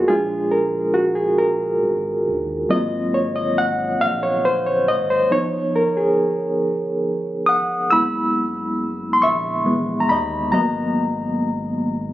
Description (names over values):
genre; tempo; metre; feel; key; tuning
slow six-eight R&B; 46 BPM (dotted quarters); 6/8; straight; unclear; A4 = 435 Hz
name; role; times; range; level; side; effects
bright reed electric piano; accompaniment; 0.0-12.1 s; E3 to E6; -18 LUFS; equal; overdrive, tremolo
round analog bass; bass; 0.0-12.1 s; F#1 to D#2; -32 LUFS; equal; none
room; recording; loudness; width
moderate plate reverb, RT60 3.7 s; recorded on a phone in the room, club reverb, compression; -18 LUFS; side -14 dB against mid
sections
0.0-7.9 A section; 7.9-12.1 B section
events
reed electric piano solo 0.0-7.9, 7.9-12.1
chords
0.1 A#7; 2.7 G#13; 5.3 Fm7b5; 7.9 F#7sus4; 10.5 G#m9